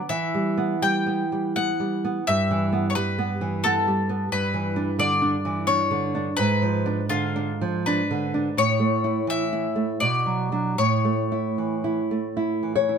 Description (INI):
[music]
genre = romantic duo for mandolin and classical guitar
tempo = 75-90 BPM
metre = 3/4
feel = rubato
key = unclear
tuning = A4 = 440 Hz
[part]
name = bowl-back mandolin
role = melody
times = 0.0-12.3 s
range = E#4 to G5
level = -25 LUFS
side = left 4 dB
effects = none
[part]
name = nylon-string guitar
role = accompaniment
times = 0.0-13.0 s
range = G2 to C#5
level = -23 LUFS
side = right 2 dB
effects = none
[sound]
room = moderate studio reverb, RT60 0.9 s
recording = band playing live in one room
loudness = -21 LUFS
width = side -6 dB against mid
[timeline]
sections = 0.0-13.0 A section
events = none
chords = 0.1 Em; 2.3 Em/G; 4.3 Em7/G; 6.4 G#dim7; 8.6 A; 10.0 Bm; 10.8 A